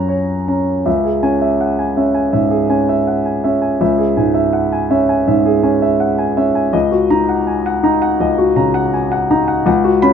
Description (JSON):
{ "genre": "neoclassical minimalist piano", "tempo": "82 BPM", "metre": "4/4", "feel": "rubato", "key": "C# dorian", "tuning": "A4 = 441 Hz", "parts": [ { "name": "warm grand piano", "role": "solo", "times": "0.0-10.1 s", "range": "C#2 to B5", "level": "-13 LUFS", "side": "equal", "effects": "none" } ], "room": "light reverb", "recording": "minimal, uncompressed stereo recording", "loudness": "-13 LUFS", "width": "side -7 dB against mid", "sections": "0.9-10.1 A section", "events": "none", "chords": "0.0 F#; 0.9 C#m; 6.7 D#m7/C#" }